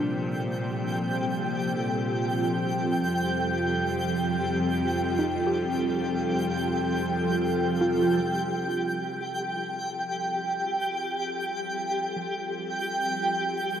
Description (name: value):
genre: ambient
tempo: free time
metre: none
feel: none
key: unclear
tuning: A4 = 440 Hz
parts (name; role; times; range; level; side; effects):
- ethereal airy pad; sustained chords; 0.0-13.8 s; F3 to A4; -28 LUFS; equal; ensemble chorus, built-in reverb, phaser
- soft round pluck; arpeggios; 0.0-13.8 s; F3 to G4; -33 LUFS; right 1 dB; none
- bright studio cello section; bass; 0.0-8.2 s; F2 to Bb2; -34 LUFS; equal; none
- analog drone; drone; 0.0-8.3 s; C3 to C4; -38 LUFS; left 1 dB; chorus
- twinkling granular texture; texture; 0.0-13.8 s; G4 to G5; -29 LUFS; equal; built-in reverb
room: wet cathedral reverb, RT60 5.5 s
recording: none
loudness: -25 LUFS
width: side -9 dB against mid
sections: 0.0-8.2 A section; 8.2-13.8 B section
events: fade-in on ambient pad 8.2-13.8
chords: 0.0 Bbmaj7; 3.0 F5; 8.2 C5